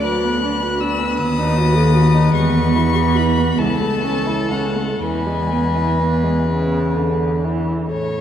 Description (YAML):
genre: classical, slow romantic movement for string quartet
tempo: 39-54 BPM (dotted quarters)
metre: 6/8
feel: rubato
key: unclear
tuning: A4 = 435 Hz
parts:
  - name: rich violin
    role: melody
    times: 0.0-8.2 s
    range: F#5 to F#6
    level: -27 LUFS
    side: left 6 dB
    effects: none
  - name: warm violin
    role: second line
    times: 0.0-8.2 s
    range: A4 to C#5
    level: -23 LUFS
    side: left 3 dB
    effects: none
  - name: dark viola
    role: accompaniment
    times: 0.0-8.2 s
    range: C#3 to A4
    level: -22 LUFS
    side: right 1 dB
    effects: none
  - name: clear cello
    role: bass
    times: 0.0-8.2 s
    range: C#2 to A2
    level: -18 LUFS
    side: right 1 dB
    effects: none
room: wet church reverb, RT60 3.3 s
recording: dark, warm production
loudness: -15 LUFS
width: side -9 dB against mid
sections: 0.0-7.9 A section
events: none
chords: 0.0 Bm/D; 1.2 B7/D#; 2.3 E; 3.6 A/C#; 5.0 E